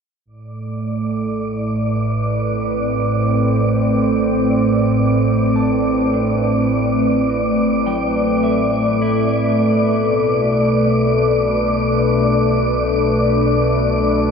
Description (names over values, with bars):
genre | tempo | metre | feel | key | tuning
ambient | 52 BPM | 4/4 | straight | A minor | A4 = 441 Hz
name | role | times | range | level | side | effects
warbly tape-like pad | sustained chords | 0.5-14.3 s | A2 to B4 | -16 LUFS | equal | chorus, built-in reverb
warm sub bass | bass | 0.3-14.3 s | A1 to B1 | -32 LUFS | equal | none
wind-like tuned noise texture | texture | 0.7-14.3 s | D5 to D6 | -22 LUFS | left 2 dB | built-in reverb
mellow electric guitar | arpeggios | 5.6-13.3 s | F#3 to A5 | -31 LUFS | equal | analog chorus, tape echo
room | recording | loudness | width
wet huge ambient reverb, RT60 7.0 s | cassette tape | -15 LUFS | side -6 dB against mid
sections
0.3-14.3 A section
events
fade-in on clean electric guitar 0.3-14.3; fade-in on sub bass 0.3-14.3; filter sweep on ambient pad 0.3-14.3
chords
0.3 Amadd9; 9.6 Bm7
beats
| 0.26 1.45 2.63 3.80 | 4.97 6.13 7.29 8.44 | 9.60 10.76 11.92 13.08 | 14.25